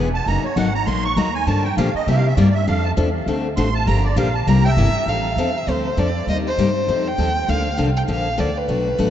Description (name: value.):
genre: acoustic string swing (jazz manouche).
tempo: 200 BPM.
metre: 4/4.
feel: swing 59% on 8ths.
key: F major.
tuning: A4 = 439 Hz.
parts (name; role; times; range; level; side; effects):
picked steel-string acoustic guitar; accompaniment; 0.0-9.1 s; B2 to A4; -22 LUFS; left 4 dB; none.
upright bass; bass; 0.0-9.1 s; E1 to C3; -20 LUFS; right 1 dB; none.
musette accordion; second line; 0.1-4.7 s; Db5 to Db6; -25 LUFS; right 4 dB; none.
warm violin; melody; 4.7-9.1 s; B4 to G5; -22 LUFS; equal; none.
room: moderate cathedral reverb, RT60 5.9 s.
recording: in a vast, echoing space, nothing above 7.8 kHz.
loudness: -17 LUFS.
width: side -10 dB against mid.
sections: 0.0-5.1 A section; 5.1-9.1 B section.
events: accordion solo 0.0-5.1.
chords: 0.3 Gb6; 1.5 Gm7; 2.1 C7; 2.7 F6; 3.3 D7; 3.9 Gm7; 4.5 C7; 5.1 F6; 6.3 Cm7; 6.9 F7; 7.5 Bbmaj7.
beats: | 0.27 0.57 0.87 1.17 | 1.47 1.77 2.07 2.37 | 2.67 2.97 3.27 3.57 | 3.87 4.17 4.47 4.77 | 5.07 5.38 5.68 5.98 | 6.28 6.58 6.88 7.18 | 7.48 7.79 8.09 8.39 | 8.69 8.99.